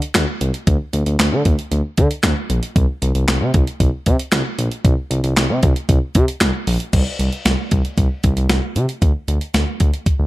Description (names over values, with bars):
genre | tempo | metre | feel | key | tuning
synth-pop | 115 BPM | 4/4 | straight | unclear | A4 = 440 Hz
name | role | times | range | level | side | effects
clean 12-bit digital drum machine | drums | 0.0-10.2 s | crash cymbal, handclaps, hi-hat, kick drum, snare drum | -17 LUFS | equal | none
smooth gliding synth bass | bass | 0.1-10.3 s | Bb1 to D3 | -18 LUFS | equal | none
room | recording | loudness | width
little or no reverb | none | -15 LUFS | side -18 dB against mid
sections
0.0-6.9 A section; 6.9-9.0 B section; 9.0-10.3 C section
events
none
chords
none